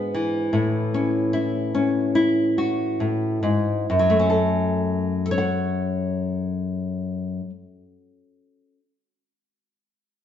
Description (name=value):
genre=folk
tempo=66-78 BPM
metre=4/4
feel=straight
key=F# minor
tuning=A4 = 439 Hz
part: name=nylon-string guitar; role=accompaniment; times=0.0-8.9 s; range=F#2 to F#5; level=-20 LUFS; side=left 1 dB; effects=none
room=wet stone room reverb, RT60 1.3 s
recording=band playing live in one room, nothing above 7.9 kHz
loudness=-20 LUFS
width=side -9 dB against mid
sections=0.0-3.9 A section; 3.9-7.5 B section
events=slowing down 0.0-3.9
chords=0.0 E7/G#; 0.5 A; 3.9 F#m